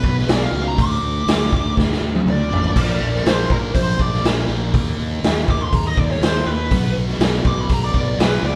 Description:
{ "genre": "psychedelic rock", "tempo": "122 BPM", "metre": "4/4", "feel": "straight", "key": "unclear", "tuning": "A4 = 440 Hz", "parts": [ { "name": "fuzz lead guitar", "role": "melody", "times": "0.0-8.6 s", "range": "Bb4 to D6", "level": "-26 LUFS", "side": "equal", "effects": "wah, distortion" }, { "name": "thick fuzz guitar", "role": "riff", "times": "0.0-8.6 s", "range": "Bb2 to Eb4", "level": "-27 LUFS", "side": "equal", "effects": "distortion, phaser" }, { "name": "fuzz fingered electric bass", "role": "bass", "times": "0.0-8.6 s", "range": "A1 to Eb2", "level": "-25 LUFS", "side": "equal", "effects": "overdrive" }, { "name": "raw garage drum kit", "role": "drums", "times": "0.0-8.3 s", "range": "crash cymbal, hi-hat, kick drum, snare drum, toms", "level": "-21 LUFS", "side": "equal", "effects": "none" } ], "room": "moderate studio reverb, RT60 0.8 s", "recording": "band playing live in one room", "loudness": "-18 LUFS", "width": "mono", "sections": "0.0-8.6 A section", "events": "lead electric guitar solo 0.0-8.6; drum fill 1.8-2.8", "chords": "0.0 B5; 0.8 D5; 2.8 Bb; 4.7 Eb5; 6.7 B5" }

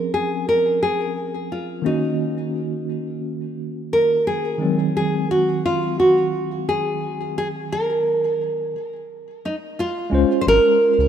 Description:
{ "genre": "sunset chillout", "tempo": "87 BPM", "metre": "4/4", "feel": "straight", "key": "unclear", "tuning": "A4 = 440 Hz", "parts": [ { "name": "nylon-string guitar", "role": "melody", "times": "0.0-11.1 s", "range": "Eb4 to C5", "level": "-20 LUFS", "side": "right 1 dB", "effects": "digital delay" }, { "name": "tine electric piano", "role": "accompaniment", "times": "0.0-11.1 s", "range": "Eb3 to C5", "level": "-24 LUFS", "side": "equal", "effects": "medium stereo tremolo, auto-pan, digital delay" }, { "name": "round analog bass", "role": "bass", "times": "10.1-11.1 s", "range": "Ab1 to Db2", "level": "-20 LUFS", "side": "left 1 dB", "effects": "none" } ], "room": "moderate plate reverb, RT60 2.8 s", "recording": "rough home demo mix", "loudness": "-18 LUFS", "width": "side -9 dB against mid", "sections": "0.0-10.1 A section", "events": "break 8.7-10.1", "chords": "0.0 Dbmaj7; 1.8 Ebm7; 4.6 Ab7; 10.1 Dbmaj7" }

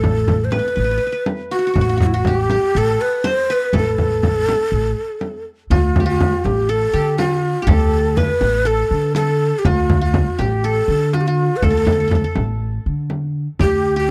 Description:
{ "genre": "Arabic maqam ensemble", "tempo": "122 BPM", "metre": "4/4", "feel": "straight", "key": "unclear", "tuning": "A4 = 439 Hz", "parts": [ { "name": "breathy mellow ney", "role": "melody", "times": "0.0-14.1 s", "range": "E4 to C5", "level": "-21 LUFS", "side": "equal", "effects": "none" }, { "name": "qanun", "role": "second line", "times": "0.0-14.1 s", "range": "F#4-50c to C5", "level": "-28 LUFS", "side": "equal", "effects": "none" }, { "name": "upright bass", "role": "bass", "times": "0.0-14.1 s", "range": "A1 to D3", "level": "-22 LUFS", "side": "equal", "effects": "none" }, { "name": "frame drum", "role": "percussion", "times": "0.0-13.7 s", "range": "none", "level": "-22 LUFS", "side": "equal", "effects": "none" } ], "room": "small room ambience", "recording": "dry, close 1970s-style studio recording", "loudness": "-18 LUFS", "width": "mono", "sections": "0.0-5.7 A section; 5.7-14.1 B section", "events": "none", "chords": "none" }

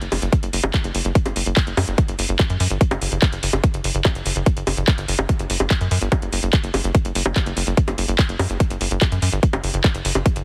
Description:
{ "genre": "psychedelic trance", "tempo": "145 BPM", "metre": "4/4", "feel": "straight", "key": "unclear", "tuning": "A4 = 440 Hz", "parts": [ { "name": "tight sequencer bass", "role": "bass", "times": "0.0-10.4 s", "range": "F#1 to F#2", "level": "-25 LUFS", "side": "equal", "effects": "none" }, { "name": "drum and bass drum kit", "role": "drums", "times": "0.0-10.4 s", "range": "bongos, handclaps, hi-hat", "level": "-26 LUFS", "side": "equal", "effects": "none" }, { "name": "electronic kick drum", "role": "drums", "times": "0.3-10.3 s", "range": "none", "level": "-20 LUFS", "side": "equal", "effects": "none" } ], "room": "little or no reverb", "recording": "heavily compressed radio sound, multiband compression", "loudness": "-20 LUFS", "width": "mono", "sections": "0.0-10.4 A section", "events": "none", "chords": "none" }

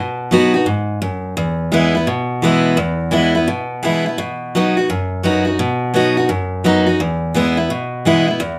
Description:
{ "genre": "country", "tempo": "171 BPM", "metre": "4/4", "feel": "swing 64% on 8ths", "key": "E major", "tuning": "A4 = 439 Hz", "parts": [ { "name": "picked steel-string acoustic guitar", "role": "solo", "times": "0.0-8.6 s", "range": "E2 to F#4", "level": "-17 LUFS", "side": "equal", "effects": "none" } ], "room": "wet studio reverb, RT60 0.5 s", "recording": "rough home demo mix", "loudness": "-17 LUFS", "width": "mono", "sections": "0.0-8.6 A section", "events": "none", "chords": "0.0 B; 1.4 E; 4.2 B; 7.0 E" }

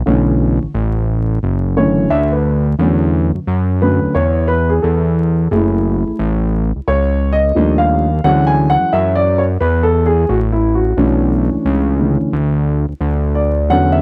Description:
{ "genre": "hip hop, jazz-hop", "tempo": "88 BPM", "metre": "4/4", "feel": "swing 64% on 16ths", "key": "B dorian", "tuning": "A4 = 439 Hz", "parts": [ { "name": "fat analog bass", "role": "bass", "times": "0.0-14.0 s", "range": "F#1 to F#2", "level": "-17 LUFS", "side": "equal", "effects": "none" }, { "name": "dark concert grand piano", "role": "accompaniment", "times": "0.1-14.0 s", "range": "D3 to G#5", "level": "-18 LUFS", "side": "equal", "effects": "none" } ], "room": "small room ambience", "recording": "dry, close 1970s-style studio recording, vinyl crackle", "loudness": "-15 LUFS", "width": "mono", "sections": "0.0-2.8 A section; 2.8-14.0 A section", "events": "grand piano solo 0.0-2.8, 2.8-14.0", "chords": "0.1 Bm11; 2.8 E13sus4; 5.5 F#m9; 7.6 D#maj9#11; 8.2 Dmaj9#11; 11.0 Bm11" }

